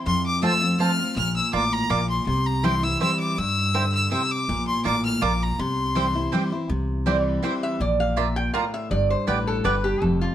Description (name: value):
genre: bluegrass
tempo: 163 BPM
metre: 3/4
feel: swing 53% on 8ths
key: C mixolydian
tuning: A4 = 441 Hz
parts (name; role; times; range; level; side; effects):
- picked steel-string acoustic guitar; accompaniment; 0.0-10.3 s; F2 to F4; -26 LUFS; left 1 dB; none
- clear fiddle; melody; 0.1-6.5 s; Bb5 to F6; -25 LUFS; left 2 dB; none
- upright bass; bass; 0.1-10.2 s; F1 to G2; -27 LUFS; equal; none
- mandolin; stabs; 0.4-9.7 s; Bb3 to Bb5; -28 LUFS; right 6 dB; none
- lap resonator guitar; second line; 7.1-10.3 s; F4 to G5; -25 LUFS; right 1 dB; none
room: moderate studio reverb, RT60 0.9 s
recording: none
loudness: -21 LUFS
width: side -11 dB against mid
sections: 0.0-6.7 A section; 6.7-10.3 B section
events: resonator guitar played with a steel bar solo 6.7-10.3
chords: 0.1 F; 1.2 Bb; 2.3 C; 4.5 Bb; 5.6 C; 7.8 Bb; 8.9 G